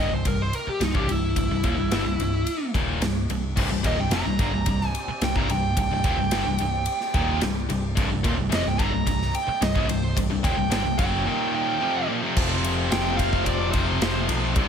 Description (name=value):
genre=hard rock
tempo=109 BPM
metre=4/4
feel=straight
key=unclear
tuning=A4 = 440 Hz
part: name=bluesy overdriven lead guitar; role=melody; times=0.0-14.2 s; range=Eb4 to Bb5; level=-28 LUFS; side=right 2 dB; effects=distortion, plate reverb, tape echo
part: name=overdriven electric guitar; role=riff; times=0.0-14.7 s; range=C2 to F#3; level=-30 LUFS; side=left 11 dB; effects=none
part: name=scooped high-gain guitar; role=riff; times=0.0-14.7 s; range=C2 to F#3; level=-30 LUFS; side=right 8 dB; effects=distortion
part: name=overdriven picked electric bass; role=bass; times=0.0-14.7 s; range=C1 to B1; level=-28 LUFS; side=equal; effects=none
part: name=big rock drum kit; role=drums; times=0.3-14.7 s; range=crash cymbal, kick drum, ride cymbal, snare drum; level=-27 LUFS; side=equal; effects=none
part: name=tonewheel organ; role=sustained chords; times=3.6-14.7 s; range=F3 to F5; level=-39 LUFS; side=equal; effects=none
part: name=tight distorted guitar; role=riff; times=3.6-14.7 s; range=C2 to F4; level=-30 LUFS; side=equal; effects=distortion
room=light reverb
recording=none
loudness=-21 LUFS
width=side -7 dB against mid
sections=0.0-12.4 A section; 12.4-14.7 B section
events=lead electric guitar solo 0.0-12.4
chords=0.0 C5; 11.3 Eb5; 11.8 C5; 12.4 F